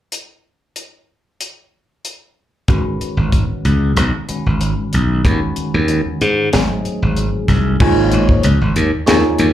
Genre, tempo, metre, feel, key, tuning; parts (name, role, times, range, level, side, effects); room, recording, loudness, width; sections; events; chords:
electric jazz fusion; 94 BPM; 4/4; straight; G# phrygian; A4 = 441 Hz
tight funk drum kit; drums; 0.1-9.5 s; crash cymbal, hi-hat, kick drum, rim click, snare drum; -18 LUFS; equal
bell-like tine electric piano; accompaniment; 2.7-9.5 s; D#3 to D#5; -20 LUFS; equal; medium stereo tremolo, phaser, plate reverb, slapback echo
glassy slap bass; bass; 2.7-9.5 s; G#1 to G#2; -14 LUFS; equal
light reverb; live gig heard through the venue's PA, club reverb; -13 LUFS; side -12 dB against mid
0.1-2.7 A section; 2.7-7.8 B section; 7.8-9.5 C section
0.1 N.C.; 2.7 G#m7; 5.2 B69/D#; 6.5 G#7b9; 7.8 G#sus4